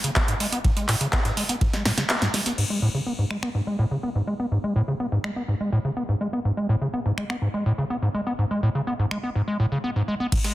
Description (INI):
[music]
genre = acid house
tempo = 124 BPM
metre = 4/4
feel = straight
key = G# phrygian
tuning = A4 = 440 Hz
[part]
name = overdriven acid bass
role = riff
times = 0.0-10.5 s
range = G#2 to B3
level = -24 LUFS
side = equal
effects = sidechain pumping, tape echo
[part]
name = electro analog drum machine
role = drums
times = 0.0-10.5 s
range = crash cymbal, finger snaps, handclaps, hi-hat, snare drum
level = -26 LUFS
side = equal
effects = none
[part]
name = breakbeat sampler-style drum kit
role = drums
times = 0.2-2.6, 10.3-10.5 s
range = ride cymbal, snare drum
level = -36 LUFS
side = right 2 dB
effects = none
[part]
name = electronic kick drum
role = drums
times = 0.2-1.7, 10.3-10.4 s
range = none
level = -23 LUFS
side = equal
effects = none
[sound]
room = moderate plate reverb, RT60 2.1 s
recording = dense, heavily limited modern master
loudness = -22 LUFS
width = side -16 dB against mid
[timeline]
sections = 0.0-2.6 A section; 2.6-10.3 B section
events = filter sweep on acid bass 0.0-2.6, 2.6-10.3; kick drops out 2.1-2.6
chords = none